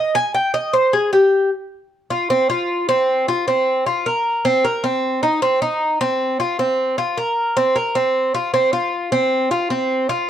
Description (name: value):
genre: latin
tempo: 154 BPM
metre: 4/4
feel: straight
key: F minor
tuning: A4 = 440 Hz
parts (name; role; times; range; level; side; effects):
- Cuban tres; solo; 0.0-10.3 s; C4 to Ab5; -16 LUFS; equal; none
room: light reverb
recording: dark, warm production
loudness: -16 LUFS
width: side -10 dB against mid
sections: 0.0-1.9 A section; 1.9-10.3 B section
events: Cuban tres solo 0.0-1.9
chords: none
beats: | 0.34 0.74 1.13 1.52 | 1.91 2.30 2.69 3.08 | 3.47 3.86 4.25 4.64 | 5.03 5.42 5.81 6.20 | 6.59 6.98 7.37 7.76 | 8.15 8.54 8.93 9.32 | 9.71 10.10